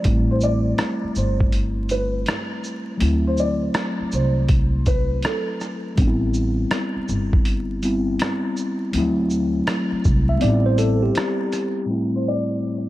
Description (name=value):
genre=lo-fi hip hop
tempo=81 BPM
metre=4/4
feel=swing 65% on 16ths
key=A dorian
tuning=A4 = 442 Hz
part: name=mellow tine electric piano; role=accompaniment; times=0.0-12.9 s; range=A2 to E4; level=-23 LUFS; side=left 1 dB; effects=slow stereo tremolo
part: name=boom bap sampler-style drum kit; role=drums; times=0.0-11.8 s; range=hi-hat, kick drum, rim click, shaker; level=-23 LUFS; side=equal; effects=none
part: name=upright bass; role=bass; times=0.1-11.1 s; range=G1 to D2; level=-22 LUFS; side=equal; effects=none
part: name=felt-muted upright piano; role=melody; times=0.3-5.6, 12.2-12.9 s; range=A4 to D5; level=-27 LUFS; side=equal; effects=lush chorus
part: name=mellow tine electric piano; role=second line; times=10.3-11.9 s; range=G4 to E5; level=-26 LUFS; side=right 2 dB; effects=medium stereo tremolo, ping-pong delay
room=light reverb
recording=vinyl crackle, low-pass filter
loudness=-19 LUFS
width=side -16 dB against mid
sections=0.0-11.9 A section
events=kick muted 10.4-11.9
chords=0.0 Am7; 3.0 D9; 6.0 Am9; 8.9 D9; 10.4 Am7